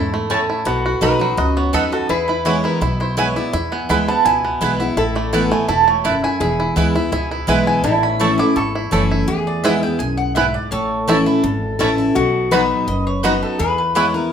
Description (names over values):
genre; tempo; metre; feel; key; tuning
bluegrass; 167 BPM; 4/4; straight; A major; A4 = 442 Hz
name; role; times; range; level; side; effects
mandolin; melody; 0.0-14.3 s; G#4 to D6; -22 LUFS; right 4 dB; none
lap resonator guitar; second line; 0.0-14.3 s; E4 to B4; -23 LUFS; left 3 dB; none
picked steel-string acoustic guitar; accompaniment; 0.0-14.3 s; E2 to F#4; -20 LUFS; equal; none
bluegrass banjo; arpeggios; 0.0-14.0 s; F#3 to A4; -22 LUFS; right 1 dB; none
upright bass; bass; 0.0-14.1 s; E1 to E2; -24 LUFS; equal; none
mandolin; stabs; 0.3-14.1 s; A3 to B5; -23 LUFS; right 3 dB; none
room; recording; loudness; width
moderate large studio reverb, RT60 1.1 s; minimal, uncompressed stereo recording; -15 LUFS; side -8 dB against mid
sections
0.0-9.3 A section; 9.3-14.3 A section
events
none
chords
0.0 A; 0.7 B; 2.1 E; 5.0 Asus2; 6.4 E; 7.8 A; 9.3 E; 10.7 A; 12.2 B; 13.6 E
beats
0.30 | 0.66 1.02 1.38 1.74 | 2.10 2.46 2.81 3.17 | 3.53 3.89 4.25 4.61 | 4.97 5.33 5.69 6.05 | 6.41 6.76 7.12 7.48 | 7.84 8.20 8.56 8.92 | 9.28 9.64 10.00 10.36 | 10.72 11.08 11.44 11.80 | 12.16 12.52 12.88 13.24 | 13.60 13.96 14.31